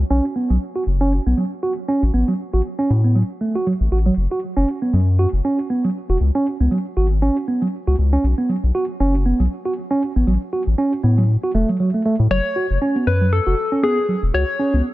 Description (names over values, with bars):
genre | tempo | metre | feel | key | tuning
IDM | 118 BPM | 4/4 | swing 56% on 16ths | unclear | A4 = 441 Hz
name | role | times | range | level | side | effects
round analog bass | bass | 0.0-14.8 s | E1 to A2 | -17 LUFS | left 1 dB | none
mellow tine electric piano | arpeggios | 0.1-14.8 s | F#3 to F#4 | -20 LUFS | right 2 dB | vintage 12-bit sampler grit, low-pass filter, digital delay
soft struck synth lead | melody | 12.3-14.8 s | G#4 to C#5 | -21 LUFS | left 3 dB | chorus, dub echo
room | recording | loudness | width
little or no reverb | none | -16 LUFS | side -17 dB against mid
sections
0.0-14.9 A section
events
none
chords
0.1 Bsus2; 2.1 N.C.; 6.2 C#5; 8.2 Bsus2; 10.3 N.C.; 12.3 F#m; 14.3 C#5